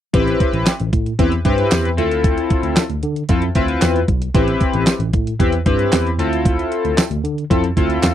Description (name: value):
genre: early-eighties boogie funk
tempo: 114 BPM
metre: 4/4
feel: straight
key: A minor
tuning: A4 = 445 Hz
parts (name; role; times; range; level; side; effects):
- chorused polysynth; accompaniment; 0.1-8.1 s; C4 to B4; -18 LUFS; left 2 dB; none
- tine electric piano; bass; 0.1-8.1 s; A1 to D3; -20 LUFS; equal; overdrive, fast stereo tremolo
- clean 12-bit digital drum machine; drums; 0.1-8.1 s; handclaps, hi-hat, kick drum, snare drum; -17 LUFS; right 1 dB; none
- tambourine; percussion; 0.7-8.1 s; none; -30 LUFS; right 19 dB; none
room: little or no reverb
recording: dry, close 1970s-style studio recording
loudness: -15 LUFS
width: side -11 dB against mid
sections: 0.1-8.1 A section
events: none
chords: 0.1 Am7; 2.0 Dm7; 4.3 Am7; 6.2 Dm7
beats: | 0.14 0.66 1.19 1.72 | 2.24 2.77 3.29 3.82 | 4.35 4.87 5.40 5.93 | 6.45 6.98 7.51 8.03